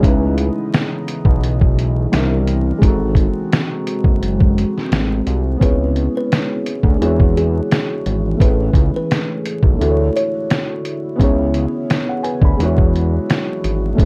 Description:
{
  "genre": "lo-fi hip hop",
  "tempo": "86 BPM",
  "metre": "4/4",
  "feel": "swing 57% on 16ths",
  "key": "C# phrygian from 5.6 s",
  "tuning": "A4 = 440 Hz",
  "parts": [
    { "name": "felt-muted upright piano", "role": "accompaniment", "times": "0.0-14.1 s", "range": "G3 to B5", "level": "-24 LUFS", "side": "equal", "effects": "none" },
    { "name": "deep dark ambient pad", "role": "sustained chords", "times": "0.0-14.1 s", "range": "C3 to D#5", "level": "-28 LUFS", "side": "equal", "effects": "chorus, built-in reverb" },
    { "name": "fat analog bass", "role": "bass", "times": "0.0-14.1 s", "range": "F#1 to E2", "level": "-20 LUFS", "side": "equal", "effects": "none" },
    { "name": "lo-fi sampler-style drum kit", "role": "drums", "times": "0.0-14.1 s", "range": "finger snaps, hi-hat, kick drum, snare drum", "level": "-18 LUFS", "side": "equal", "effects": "none" },
    { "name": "kalimba", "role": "melody", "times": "5.6-10.7 s", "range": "G#4 to C#5", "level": "-26 LUFS", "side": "equal", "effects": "tape echo" }
  ],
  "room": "light reverb",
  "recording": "dark, warm production, vinyl crackle",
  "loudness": "-17 LUFS",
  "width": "mono",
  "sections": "0.0-5.6 A section; 5.6-14.1 B section",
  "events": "none",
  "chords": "0.0 C#m9; 2.1 C9; 2.8 G#7b9; 5.6 C#m7; 7.0 E13; 8.4 Amaj9; 9.8 Dmaj9; 11.2 C#m7; 12.6 E13",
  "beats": "| 0.03 0.73 1.43 2.12 | 2.82 3.52 4.22 4.91 | 5.61 6.31 7.01 7.70 | 8.40 9.10 9.80 10.49 | 11.19 11.89 12.59 13.29 | 13.98"
}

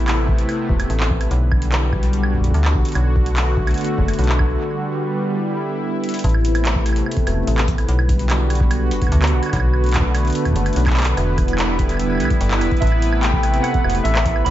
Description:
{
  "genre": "IDM",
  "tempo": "146 BPM",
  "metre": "4/4",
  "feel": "straight",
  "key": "A dorian",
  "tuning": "A4 = 440 Hz",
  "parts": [
    { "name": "warm analog pad", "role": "sustained chords", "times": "0.0-14.5 s", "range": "C3 to B4", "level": "-22 LUFS", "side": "equal", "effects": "chorus, tremolo, sidechain pumping" },
    { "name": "metallic FM bass", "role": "bass", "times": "0.0-14.5 s", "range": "E1 to D2", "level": "-18 LUFS", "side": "equal", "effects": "none" },
    { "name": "booming analog drum machine", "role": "drums", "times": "0.1-14.5 s", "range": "claves, handclaps, hi-hat", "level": "-25 LUFS", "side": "right 1 dB", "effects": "tape echo" },
    { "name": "electronic kick drum", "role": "drums", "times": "0.3-14.3 s", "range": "none", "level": "-21 LUFS", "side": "equal", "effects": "none" },
    { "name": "warbly lo-fi synth keys", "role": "melody", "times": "12.8-14.5 s", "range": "E5 to B5", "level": "-22 LUFS", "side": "right 2 dB", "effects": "chorus, vintage 12-bit sampler grit, tape echo" }
  ],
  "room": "light reverb, digital ambience",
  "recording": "nothing above 7.8 kHz",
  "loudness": "-16 LUFS",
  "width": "side -13 dB against mid",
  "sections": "0.0-6.2 A section; 6.2-14.5 A section",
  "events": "break 4.6-6.2; drum fill 6.0",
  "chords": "0.0 Amadd9; 1.3 Gmaj7/B; 3.0 Bm7; 4.6 Em7; 6.2 Amadd9; 7.9 Gmaj7/B; 9.5 Bm7; 11.2 Em7; 12.8 Amadd9",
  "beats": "0.08 0.49 0.90 | 1.31 1.72 2.13 2.54 | 2.95 3.37 3.78 4.19 | 4.60 5.01 5.42 5.83 | 6.24 6.65 7.06 7.47 | 7.88 8.30 8.71 9.12 | 9.53 9.94 10.35 10.76 | 11.17 11.58 11.99 12.41 | 12.82 13.23 13.64 14.05 | 14.46"
}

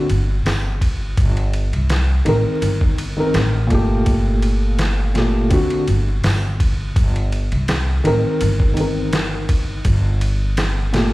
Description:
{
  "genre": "trip hop",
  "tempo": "83 BPM",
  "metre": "4/4",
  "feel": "swing 53% on 16ths",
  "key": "G minor",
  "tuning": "A4 = 440 Hz",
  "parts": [
    { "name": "felt-muted upright piano", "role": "accompaniment", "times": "0.0-11.1 s", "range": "Bb2 to Bb4", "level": "-20 LUFS", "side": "equal", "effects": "tremolo, tape echo" },
    { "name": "upright bass", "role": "bass", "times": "0.1-11.1 s", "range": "G1 to C2", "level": "-19 LUFS", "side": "equal", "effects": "none" },
    { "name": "trip hop sampler-style drum kit", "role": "drums", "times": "0.1-11.1 s", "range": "hi-hat, kick drum, ride cymbal, snare drum", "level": "-21 LUFS", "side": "equal", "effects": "none" }
  ],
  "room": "digital ambience",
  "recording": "played on a big sound system in a bare room, stone room reverb, vinyl crackle",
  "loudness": "-16 LUFS",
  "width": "side -18 dB against mid",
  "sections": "0.0-11.1 A section",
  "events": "none",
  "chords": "0.0 N.C.; 1.2 Cm7/G; 4.1 Gmadd9; 5.5 D7/G; 7.0 Eb/G; 8.4 Cm7/G; 9.9 Gmadd9",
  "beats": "0.45 | 1.18 1.90 2.62 3.35 | 4.07 4.79 5.51 6.24 | 6.96 7.68 8.41 9.13 | 9.85 10.57"
}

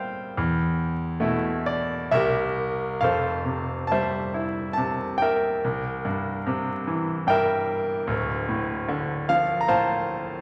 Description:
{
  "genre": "classical, lyrical solo piano",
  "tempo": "65-75 BPM",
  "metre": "3/4",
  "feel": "rubato",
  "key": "F major from 3.0 s",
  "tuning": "A4 = 438 Hz",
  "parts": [
    { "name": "bright concert grand piano", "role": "solo", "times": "0.0-10.4 s", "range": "D1 to Bb5", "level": "-25 LUFS", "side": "equal", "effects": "none" }
  ],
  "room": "wet recital hall reverb, RT60 1.4 s",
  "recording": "vinyl crackle",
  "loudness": "-25 LUFS",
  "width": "mono",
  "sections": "0.0-3.0 A section; 3.0-10.4 B section",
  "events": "none",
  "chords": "0.4 Esus4; 2.1 C7; 3.0 Fmaj9; 5.6 C7; 8.1 Dm7",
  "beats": "| 0.37 1.22 2.12 | 3.02 3.90 4.77 | 5.63 6.46 7.28 | 8.09 8.89 9.70"
}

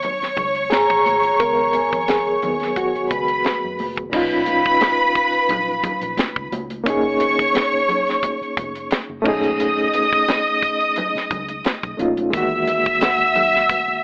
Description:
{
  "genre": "lush 1970s-style soul",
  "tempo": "88 BPM",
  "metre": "4/4",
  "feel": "swing 54% on 16ths",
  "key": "unclear",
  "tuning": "A4 = 441 Hz",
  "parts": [
    { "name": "clear studio string section", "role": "second line", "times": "0.0-14.0 s", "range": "B4 to E6", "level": "-22 LUFS", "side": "equal", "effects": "plate reverb" },
    { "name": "overdriven reed electric piano", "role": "accompaniment", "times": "0.0-14.0 s", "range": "A#2 to A#4", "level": "-25 LUFS", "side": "equal", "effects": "fast tremolo, plate reverb" },
    { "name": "tight funk drum kit", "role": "drums", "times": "0.0-13.9 s", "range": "crash cymbal, hi-hat, kick drum, snare drum", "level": "-26 LUFS", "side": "equal", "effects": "none" },
    { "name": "congas", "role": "percussion", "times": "0.0-13.9 s", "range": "none", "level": "-35 LUFS", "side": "equal", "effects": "none" },
    { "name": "vintage muted fingered electric bass", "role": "bass", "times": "0.2-13.9 s", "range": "E#1 to F#2", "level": "-41 LUFS", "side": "equal", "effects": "none" },
    { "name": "vibraphone with hard mallets", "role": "texture", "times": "0.7-6.0, 13.0-14.0 s", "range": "E#5 to A#5", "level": "-26 LUFS", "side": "equal", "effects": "none" }
  ],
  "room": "moderate studio reverb, RT60 0.5 s",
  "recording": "AM radio sound",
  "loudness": "-19 LUFS",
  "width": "mono",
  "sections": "0.0-4.1 A section; 4.1-14.0 B section",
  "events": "reed electric piano solo 0.0-4.1",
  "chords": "0.0 C#9sus4; 4.1 Bmaj9#11; 6.9 F#69; 9.3 B13; 12.3 Emaj9#11",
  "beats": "0.03 0.72 | 1.40 2.08 2.77 3.45 | 4.13 4.81 5.50 6.18 | 6.86 7.55 8.23 8.91 | 9.60 10.28 10.96 11.64 | 12.33 13.01 13.69"
}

